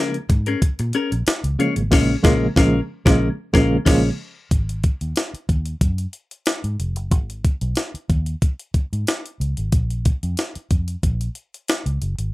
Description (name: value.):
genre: funk.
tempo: 92 BPM.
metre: 4/4.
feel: straight.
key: unclear.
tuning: A4 = 443 Hz.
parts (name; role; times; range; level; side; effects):
clean electric guitar; accompaniment; 0.0-4.1 s; C#4 to C#5; -21 LUFS; left 4 dB; none.
mellow tine electric piano; stabs; 0.0-4.1 s; C#3 to A#3; -21 LUFS; right 2 dB; medium tremolo.
breakbeat sampler-style drum kit; drums; 0.1-12.3 s; crash cymbal, hi-hat, kick drum, snare drum; -19 LUFS; equal; none.
vintage muted fingered electric bass; bass; 0.3-12.3 s; E#1 to A#2; -23 LUFS; equal; none.
room: little or no reverb.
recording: rough home demo mix.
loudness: -18 LUFS.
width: side -18 dB against mid.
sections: 0.0-4.5 A section; 4.5-12.3 B section.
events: band accent 1.9-4.5.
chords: 0.0 A#m7; 4.5 G#7(no3); 9.7 A#5.